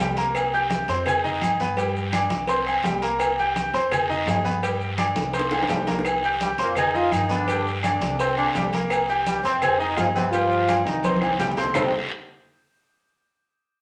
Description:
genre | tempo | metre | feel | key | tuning
latin, salsa | 168 BPM | 4/4 | straight | C minor | A4 = 441 Hz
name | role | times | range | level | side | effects
bright grand piano | accompaniment | 0.0-11.9 s | C3 to Ab6 | -29 LUFS | equal | none
upright bass | bass | 0.0-11.9 s | C2 to G2 | -35 LUFS | equal | none
cowbell and bongos | percussion | 0.0-11.8 s | none | -33 LUFS | equal | none
maracas | percussion | 0.0-11.8 s | none | -48 LUFS | equal | none
agogo bells and timbales | percussion | 0.2-11.8 s | none | -28 LUFS | equal | none
congas | percussion | 0.2-11.8 s | none | -33 LUFS | equal | none
guiro | percussion | 0.2-11.8 s | none | -38 LUFS | equal | none
claves | percussion | 0.3-11.8 s | none | -37 LUFS | equal | none
brilliant trombone section | melody | 6.4-11.9 s | G2 to F4 | -27 LUFS | equal | none
room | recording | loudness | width
wet studio reverb, RT60 0.8 s | none | -23 LUFS | mono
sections
0.0-6.1 A section; 6.1-11.8 B section; 11.8-13.2 C section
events
drum fill 5.2-6.1, 11.0-11.8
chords
0.0 C5; 1.1 Fm7; 1.8 G5; 2.5 C5; 3.9 Fm7; 4.6 G5; 5.3 C5; 6.8 Fm7; 7.5 G5; 8.2 C5; 9.6 Fm7; 10.3 G5; 11.0 Cm; 11.8 C5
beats
| 0.35 0.71 1.06 1.42 | 1.77 2.13 2.49 2.85 | 3.20 3.56 3.91 4.27 | 4.63 4.98 5.34 5.70 | 6.05 6.41 6.77 7.12 | 7.48 7.83 8.19 8.55 | 8.90 9.26 9.62 9.97 | 10.33 10.68 11.04 11.39 | 11.75

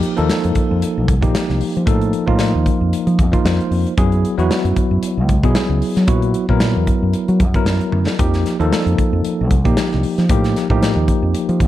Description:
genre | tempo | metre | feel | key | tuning
electric jazz fusion | 114 BPM | 4/4 | swing 55% on 16ths | unclear | A4 = 440 Hz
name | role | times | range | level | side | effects
bell-like tine electric piano | accompaniment | 0.0-11.7 s | F3 to C5 | -18 LUFS | equal | medium stereo tremolo
modern studio drum kit | drums | 0.0-11.7 s | hi-hat, kick drum, snare drum, toms | -19 LUFS | equal | none
fingered electric bass | bass | 0.2-11.7 s | C2 to Gb3 | -17 LUFS | equal | none
room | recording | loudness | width
light reverb | dark, warm production | -14 LUFS | side -13 dB against mid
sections
0.0-11.7 A section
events
tine electric piano fill 3.2-4.0; drum fill 7.9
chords
0.0 F9sus4; 4.0 Gb9sus4; 8.2 F9sus4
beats
0.30 0.82 1.35 | 1.88 2.40 2.93 3.45 | 3.98 4.50 5.03 5.56 | 6.08 6.61 7.13 7.66 | 8.18 8.71 9.23 9.76 | 10.29 10.81 11.34

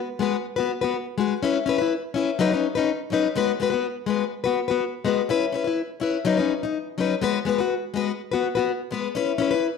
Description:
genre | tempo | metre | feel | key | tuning
highlife | 124 BPM | 4/4 | straight | unclear | A4 = 440 Hz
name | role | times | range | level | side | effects
picked plugged-in steel-string acoustic guitar | solo | 0.2-9.7 s | F#3 to B4 | -22 LUFS | left 6 dB | slapback echo
room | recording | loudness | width
moderate echo chamber reverb, RT60 1.3 s | none | -22 LUFS | side -5 dB against mid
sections
0.0-9.8 A section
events
none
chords
0.0 G#m7; 1.4 C#m7; 2.4 Badd9; 3.4 G#m7; 5.3 C#m7; 6.3 Badd9; 7.2 G#m7; 9.2 C#m7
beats
0.45 0.93 | 1.42 1.90 2.39 2.87 | 3.36 3.84 4.33 4.81 | 5.30 5.78 6.27 6.75 | 7.24 7.72 8.20 8.69 | 9.17 9.66

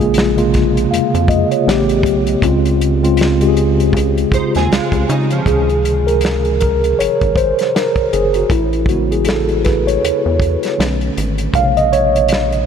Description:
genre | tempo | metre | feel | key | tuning
R&B, neo-soul | 79 BPM | 4/4 | swing 59% on 16ths | Db major | A4 = 439 Hz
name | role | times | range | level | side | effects
mellow tine electric piano | accompaniment | 0.0-12.7 s | C3 to F5 | -14 LUFS | equal | medium stereo tremolo
rubbery square bass | bass | 0.0-12.7 s | Gb1 to Db3 | -18 LUFS | equal | none
warm soul drum kit | drums | 0.0-12.7 s | hi-hat, kick drum, snare drum | -20 LUFS | equal | none
nylon-string guitar | second line | 4.3-5.7 s | F3 to C5 | -24 LUFS | right 5 dB | analog chorus, ping-pong delay
room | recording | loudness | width
moderate huge ambient reverb, RT60 8.0 s | dreamy mix soaked in reverb | -12 LUFS | side -7 dB against mid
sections
0.0-5.5 A section; 5.5-12.7 B section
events
tine electric piano solo 5.5-12.7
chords
0.0 Bbm7; 1.7 A9; 2.4 Dbmaj7; 5.5 Dbmaj9; 8.5 Amaj9; 10.8 Cbm7; 11.5 Bbm7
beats
0.15 0.91 1.67 | 2.42 3.18 3.94 4.70 | 5.46 6.22 6.98 7.74 | 8.50 9.26 10.02 10.78 | 11.54 12.30

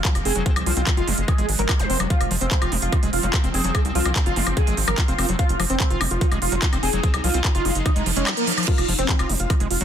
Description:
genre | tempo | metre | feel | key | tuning
psychedelic trance | 146 BPM | 4/4 | straight | F phrygian | A4 = 442 Hz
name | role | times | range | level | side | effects
wide unison lead | melody | 0.0-9.8 s | Bb3 to C5 | -26 LUFS | equal | phaser, sidechain pumping, digital delay
swarming drone | sustained chords | 0.0-9.8 s | F3 to Eb4 | -30 LUFS | right 1 dB | built-in reverb, sidechain pumping
overdriven acid bass | riff | 0.0-9.8 s | Eb3 to F4 | -30 LUFS | moving between left 7 dB and right 7 dB | distortion, auto-pan, sidechain pumping, dub echo
big-room dance drum kit | drums | 0.0-9.8 s | crash cymbal, handclaps, hi-hat, woodblock | -25 LUFS | equal | none
electronic kick drum | drums | 0.0-9.6 s | none | -20 LUFS | equal | overdrive
tight sequencer bass | bass | 0.2-9.8 s | F1 to C2 | -24 LUFS | equal | none
metallic wobble bass | second line | 0.4-4.4, 6.9-7.9 s | Ab3 to F4 | -37 LUFS | left 3 dB | none
zap and reverse cymbal | sound effects | 1.8-1.9, 8.0-8.7 s | none | -28 LUFS | right 4 dB | none
room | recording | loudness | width
digital ambience | dense, heavily limited modern master | -18 LUFS | side -9 dB against mid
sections
0.0-9.8 A section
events
reverse cymbal 8.0-8.7; kick drops out 8.3-8.7; drum fill 8.5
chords
0.0 F5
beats
0.05 | 0.46 0.87 1.28 1.69 | 2.10 2.51 2.92 3.34 | 3.75 4.16 4.57 4.98 | 5.39 5.80 6.21 6.62 | 7.04 7.45 7.86 8.27 | 8.68 9.09 9.50

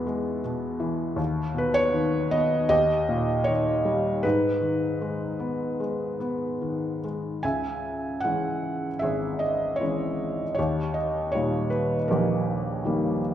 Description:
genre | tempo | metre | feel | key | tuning
classical, lyrical solo piano | 78 BPM | 4/4 | rubato | unclear | A4 = 439 Hz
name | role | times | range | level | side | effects
felt-muted upright piano | solo | 0.0-13.3 s | G#1 to G#5 | -24 LUFS | equal | none
room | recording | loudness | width
wet scoring stage reverb, RT60 1.7 s | recorded in a church or concert hall, nothing above 10.5 kHz | -24 LUFS | side -11 dB against mid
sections
0.0-7.4 A section; 7.4-13.3 B section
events
none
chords
0.0 E; 1.2 Badd9/D#; 2.7 D#; 4.2 G#m; 7.4 C#m; 10.6 D#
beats
0.44 | 1.19 1.95 2.71 3.48 | 4.25 5.02 5.81 6.62 | 7.43 8.23 9.02 9.80 | 10.57 11.34 12.10 12.86

